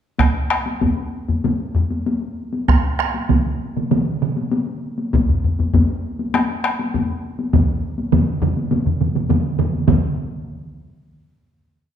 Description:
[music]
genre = japanese traditional, taiko drum ensemble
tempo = 96-108 BPM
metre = 4/4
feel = straight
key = none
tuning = none
[part]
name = solo taiko drums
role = percussion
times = 0.2-10.1 s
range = none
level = -22 LUFS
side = left 3 dB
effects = none
[part]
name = taiko ensemble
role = percussion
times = 0.2-10.4 s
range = none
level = -21 LUFS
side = left 2 dB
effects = none
[part]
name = taiko ensemble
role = percussion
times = 0.2-10.1 s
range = none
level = -20 LUFS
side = right 2 dB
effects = none
[part]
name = taiko ensemble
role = percussion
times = 2.7-10.4 s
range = none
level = -21 LUFS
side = right 6 dB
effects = none
[sound]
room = wet recital hall reverb, RT60 1.6 s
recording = minimal, uncompressed stereo recording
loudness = -17 LUFS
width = side -9 dB against mid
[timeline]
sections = 0.2-9.9 A section; 9.9-12.0 final hit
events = speeding up 0.2-12.0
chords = none

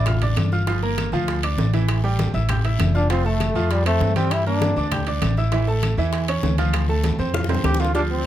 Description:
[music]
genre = latin, salsa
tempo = 198 BPM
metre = 4/4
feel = straight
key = D minor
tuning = A4 = 440 Hz
[part]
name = bright trombone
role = melody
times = 0.0-0.2, 3.0-5.0, 7.7-8.3 s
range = G3 to G4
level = -24 LUFS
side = left 1 dB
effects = none
[part]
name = bright baby grand piano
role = accompaniment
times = 0.0-8.2 s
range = E3 to G6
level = -26 LUFS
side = right 3 dB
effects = none
[part]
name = upright bass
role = bass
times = 0.0-8.3 s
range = F1 to G2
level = -21 LUFS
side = equal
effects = none
[part]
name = bongos and cowbell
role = percussion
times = 0.1-8.1 s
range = none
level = -33 LUFS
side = left 6 dB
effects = none
[part]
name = claves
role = percussion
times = 0.1-7.8 s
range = none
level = -36 LUFS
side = left 7 dB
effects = none
[part]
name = congas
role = percussion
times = 0.1-8.2 s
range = none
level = -28 LUFS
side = left 1 dB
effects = none
[part]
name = guiro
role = percussion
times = 0.1-8.3 s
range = none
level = -38 LUFS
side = left 6 dB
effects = none
[part]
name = timbales and agogo bells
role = percussion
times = 0.1-8.1 s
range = none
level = -31 LUFS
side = right 8 dB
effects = none
[sound]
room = light reverb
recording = close, detailed microphones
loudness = -18 LUFS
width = side -12 dB against mid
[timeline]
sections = 0.0-7.9 A section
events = drum fill 7.3-7.9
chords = 0.0 Dmadd9; 0.7 Gm7; 1.9 A5; 3.1 F; 4.3 Gm; 5.5 A; 6.7 Dm7

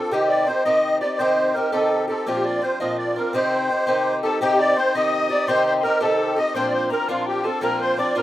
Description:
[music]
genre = celtic folk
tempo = 112 BPM (dotted quarters)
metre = 6/8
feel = straight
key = C dorian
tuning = A4 = 441 Hz
[part]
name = musette accordion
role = melody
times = 0.0-8.2 s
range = F4 to Eb5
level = -22 LUFS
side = equal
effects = none
[part]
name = fingerpicked twelve-string acoustic guitar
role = accompaniment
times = 0.0-8.2 s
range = Bb2 to G4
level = -21 LUFS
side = equal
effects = none
[part]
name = breathy mellow mid whistle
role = second line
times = 4.2-8.2 s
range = F5 to Eb6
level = -28 LUFS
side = left 6 dB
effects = none
[sound]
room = light reverb, small room ambience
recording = rough home demo mix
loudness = -18 LUFS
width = side -14 dB against mid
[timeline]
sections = 0.0-4.4 A section; 4.4-8.2 A section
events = none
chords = 0.1 Cm; 2.3 Bbadd9; 3.3 Cm; 6.6 Bbadd9

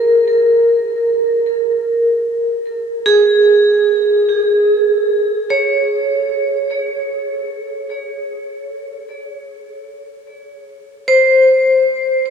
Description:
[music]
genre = ambient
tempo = free time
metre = none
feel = none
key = Bb minor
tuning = A4 = 440 Hz
[part]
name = vibraphone with hard mallets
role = solo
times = 0.0-12.3 s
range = Ab4 to Db5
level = -13 LUFS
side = right 1 dB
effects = tape echo
[sound]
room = wet huge ambient reverb, RT60 8.4 s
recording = none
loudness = -12 LUFS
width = side -7 dB against mid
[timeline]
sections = 0.0-5.5 A section; 5.5-12.3 B section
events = none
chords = none

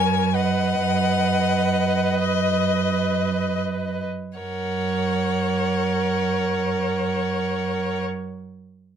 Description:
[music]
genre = classical, slow romantic movement for string quartet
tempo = 26-35 BPM (dotted quarters)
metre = 6/8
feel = rubato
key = F# major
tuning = A4 = 443 Hz
[part]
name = rich violin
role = melody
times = 0.0-8.0 s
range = D#5 to G#5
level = -27 LUFS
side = left 6 dB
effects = none
[part]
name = rich violin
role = second line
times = 0.0-8.0 s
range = C#5 to D#5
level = -28 LUFS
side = left 6 dB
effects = none
[part]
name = rich viola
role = accompaniment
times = 0.0-8.0 s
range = A#4 to B4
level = -27 LUFS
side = right 3 dB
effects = none
[part]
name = warm cello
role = bass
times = 0.0-8.0 s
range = F#2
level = -24 LUFS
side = right 5 dB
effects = none
[sound]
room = little or no reverb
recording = close, detailed microphones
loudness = -20 LUFS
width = side -8 dB against mid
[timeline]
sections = 0.0-4.4 A section; 4.4-8.6 B section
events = slowing down 0.0-4.4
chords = 0.3 B/F#; 4.4 F#

